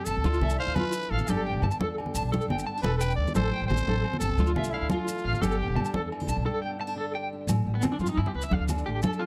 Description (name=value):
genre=highlife guitar band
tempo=116 BPM (dotted quarters)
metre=12/8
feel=straight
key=unclear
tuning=A4 = 440 Hz
part: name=growling trumpet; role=melody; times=0.0-5.9 s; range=E4 to D5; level=-35 LUFS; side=equal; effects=none
part: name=fingerpicked steel-string acoustic guitar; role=accompaniment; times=0.0-9.3 s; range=E2 to G4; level=-39 LUFS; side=equal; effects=none
part: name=electric guitar at the edge of break-up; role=arpeggios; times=0.1-9.3 s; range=B3 to A5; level=-35 LUFS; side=equal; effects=tremolo
part: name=upright bass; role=bass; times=0.1-9.0 s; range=E1 to G2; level=-31 LUFS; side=equal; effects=none
part: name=congas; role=percussion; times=0.1-9.2 s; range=none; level=-33 LUFS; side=equal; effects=none
part: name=maracas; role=percussion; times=0.1-9.2 s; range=none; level=-43 LUFS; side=equal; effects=none
part: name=agogo bells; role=percussion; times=0.4-9.2 s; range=none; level=-44 LUFS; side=equal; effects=none
room=studio ambience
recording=dry, close 1970s-style studio recording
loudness=-28 LUFS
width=mono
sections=0.0-7.5 A section; 7.5-9.3 B section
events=break 6.5-7.5; clean electric guitar solo 7.5-9.3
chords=0.3 Dmadd9; 1.3 Gadd9; 3.4 Am7; 4.4 Dmadd9; 5.4 Gadd9; 7.5 Am7; 8.5 Dm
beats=0.25 0.77 | 1.29 1.80 2.32 2.84 | 3.36 3.87 4.39 4.91 | 5.42 5.94 6.46 6.98 | 7.49 8.01 8.53 9.04